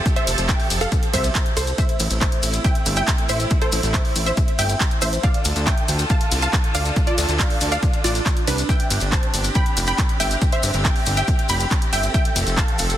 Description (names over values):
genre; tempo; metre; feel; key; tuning
uplifting trance; 139 BPM; 4/4; straight; A minor; A4 = 440 Hz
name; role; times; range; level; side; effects
wide unison pluck; melody; 0.0-13.0 s; D4 to B5; -25 LUFS; right 1 dB; sidechain pumping, dub echo
rich studio string section; sustained chords; 0.0-13.0 s; D3 to A4; -29 LUFS; right 1 dB; sidechain pumping
electronic kick drum; drums; 0.1-12.7 s; none; -20 LUFS; equal; none
techno drum kit; drums; 0.1-13.0 s; handclaps, hi-hat, ride cymbal; -26 LUFS; right 2 dB; none
maracas; percussion; 0.1-13.0 s; none; -28 LUFS; left 5 dB; none
fat analog bass; bass; 0.3-13.0 s; F1 to D2; -23 LUFS; equal; sidechain pumping
room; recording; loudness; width
digital ambience; dense, heavily limited modern master; -17 LUFS; side -12 dB against mid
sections
0.0-13.0 A section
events
none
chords
0.0 Fadd9; 1.8 Am; 5.2 Dm; 8.7 Gsus4; 12.1 Fadd9